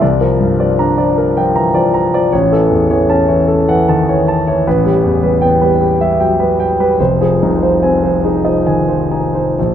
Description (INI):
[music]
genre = classical, impressionist solo piano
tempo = 62-80 BPM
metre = 3/4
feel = rubato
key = unclear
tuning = A4 = 440 Hz
[part]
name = warm concert grand piano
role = solo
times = 0.0-9.7 s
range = F1 to Bb5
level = -11 LUFS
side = equal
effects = none
[sound]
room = wet recital hall reverb, RT60 1.5 s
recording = minimal, uncompressed stereo recording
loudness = -11 LUFS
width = side -9 dB against mid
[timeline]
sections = 0.0-9.7 A section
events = none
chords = 0.0 Bb69/C; 2.3 A6; 4.7 G69/A; 7.0 Fm7